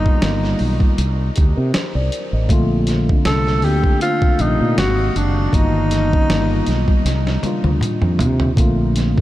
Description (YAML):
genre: R&B, neo-soul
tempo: 79 BPM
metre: 4/4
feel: swing 55% on 16ths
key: Bb major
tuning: A4 = 440 Hz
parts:
  - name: breathy tenor saxophone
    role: melody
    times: 0.0-7.1 s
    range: D4 to A4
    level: -23 LUFS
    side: equal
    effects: none
  - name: mellow tine electric piano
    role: accompaniment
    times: 0.0-9.2 s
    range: C3 to Eb5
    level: -21 LUFS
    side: left 2 dB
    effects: lush chorus
  - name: mellow fretless electric bass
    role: bass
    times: 0.0-9.2 s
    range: Gb1 to C3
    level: -18 LUFS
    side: equal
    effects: none
  - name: boom bap sampler-style drum kit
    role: drums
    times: 0.1-9.2 s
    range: hi-hat, kick drum, snare drum, toms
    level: -19 LUFS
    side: equal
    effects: none
room: light reverb, digital ambience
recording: none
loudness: -14 LUFS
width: side -15 dB against mid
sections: 0.0-9.2 A section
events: drum fill 7.0-8.6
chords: 0.0 G7alt; 1.0 Csus2; 2.5 Bbmaj9; 4.8 Ab9; 5.5 G7alt; 7.0 Cm11; 8.6 Bbmaj9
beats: 0.21 0.97 1.73 | 2.49 3.25 4.01 4.77 | 5.53 6.29 7.05 7.81 | 8.57